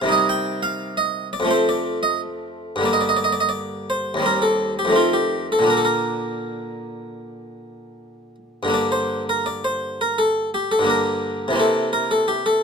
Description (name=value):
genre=classical, baroque-style suite movement for harpsichord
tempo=78-90 BPM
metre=4/4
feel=rubato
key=unclear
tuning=A4 = 440 Hz
part: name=harpsichord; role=solo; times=0.0-12.6 s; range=Eb2 to G5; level=-19 LUFS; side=equal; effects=none
room=light reverb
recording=minimal, uncompressed stereo recording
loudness=-18 LUFS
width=side -6 dB against mid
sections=0.0-8.7 A section; 8.7-12.6 A section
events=none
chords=0.1 Cm; 1.5 F; 2.9 Gm; 4.2 Cm/Eb; 5.0 F7; 5.7 Bb; 8.7 Gm; 11.6 C7